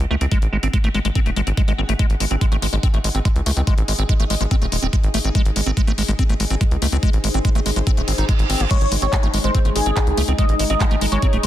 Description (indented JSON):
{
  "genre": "psychedelic trance",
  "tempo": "143 BPM",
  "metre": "4/4",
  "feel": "straight",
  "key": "G# major",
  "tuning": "A4 = 440 Hz",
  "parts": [
    { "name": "tight sequencer bass", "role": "bass", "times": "0.0-11.5 s", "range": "D#1 to C#2", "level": "-20 LUFS", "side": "equal", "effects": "tube saturation" },
    { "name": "drum and bass drum kit", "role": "drums", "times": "0.0-11.5 s", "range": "crash cymbal, handclaps, hi-hat", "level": "-26 LUFS", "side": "left 3 dB", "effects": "none" },
    { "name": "granular cloud pad", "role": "texture", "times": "0.1-11.5 s", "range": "D#4 to F#5", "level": "-32 LUFS", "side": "left 1 dB", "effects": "built-in reverb, sidechain pumping" },
    { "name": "liquid acid bass", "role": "riff", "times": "0.1-11.5 s", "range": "G#3 to D#4", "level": "-25 LUFS", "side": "moving between left 3 dB and right 5 dB", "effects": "phaser, auto-pan, sidechain pumping, dub echo" },
    { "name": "electronic kick drum", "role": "drums", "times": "0.3-11.3 s", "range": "none", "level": "-18 LUFS", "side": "equal", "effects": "none" },
    { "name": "reverse cymbal", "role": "sound effects", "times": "8.0-8.7 s", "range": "none", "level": "-28 LUFS", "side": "right 7 dB", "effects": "none" },
    { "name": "wide unison lead", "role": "melody", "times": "8.7-11.5 s", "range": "G#4 to D#5", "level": "-24 LUFS", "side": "equal", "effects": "phaser, sidechain pumping, dub echo" },
    { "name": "bubbling stepped-filter texture", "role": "sustained chords", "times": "8.7-11.5 s", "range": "G#3 to D#4", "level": "-27 LUFS", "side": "left 2 dB", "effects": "chorus, built-in reverb, sidechain pumping" }
  ],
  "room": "digital ambience",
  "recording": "dense, heavily limited modern master",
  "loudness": "-16 LUFS",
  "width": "side -12 dB against mid",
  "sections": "0.0-11.5 A section",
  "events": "fade-in on ambient pad 0.0-11.5; reverse cymbal 8.0-8.7",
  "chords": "0.0 G#5"
}